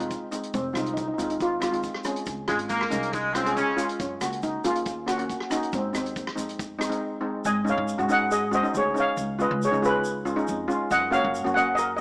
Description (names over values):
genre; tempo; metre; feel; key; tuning
calypso; 139 BPM; 4/4; straight; Db major; A4 = 439 Hz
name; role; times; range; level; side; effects
steel pan; melody; 0.0-12.0 s; C4 to Ab5; -25 LUFS; equal; none
steel pan; accompaniment; 0.0-12.0 s; Ab3 to Ab4; -28 LUFS; equal; none
upright bass; bass; 0.0-12.0 s; F1 to Ab2; -33 LUFS; equal; none
warm soul drum kit; drums; 0.0-7.0 s; hi-hat, kick drum, rim click; -34 LUFS; equal; none
tube shaker; percussion; 0.1-12.0 s; none; -43 LUFS; equal; none
clear horn section; second line; 2.5-3.9 s; Db3 to Db4; -25 LUFS; equal; none
room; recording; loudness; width
light reverb, studio ambience; rough home demo mix, small speaker sound; -23 LUFS; side -28 dB against mid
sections
0.0-7.5 A section; 7.5-12.0 B section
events
none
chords
0.0 Fm; 2.3 Db; 4.0 Gb6; 5.7 Ab; 7.5 Absus4; 9.2 Db7; 10.9 Gb6